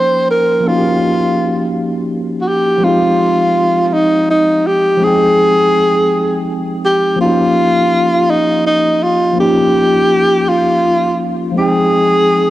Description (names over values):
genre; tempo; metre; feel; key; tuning
R&B; 55 BPM (dotted quarters); 6/8; straight; F minor; A4 = 440 Hz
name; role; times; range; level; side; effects
breathy tenor saxophone; melody; 0.0-12.5 s; Eb4 to C5; -12 LUFS; equal; cassette tape
mellow tine electric piano; accompaniment; 0.0-12.5 s; F3 to G5; -16 LUFS; equal; medium stereo tremolo
room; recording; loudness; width
moderate lush hall reverb, RT60 2.5 s; home recording on cassette; -11 LUFS; side -15 dB against mid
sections
0.0-2.8 A section; 2.8-12.5 B section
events
none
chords
0.0 Eb9; 2.8 Fm9; 7.2 Eb9; 11.6 Fm9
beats
| 0.64 1.73 | 2.83 3.92 | 5.01 6.10 | 7.19 8.28 | 9.37 10.46 | 11.55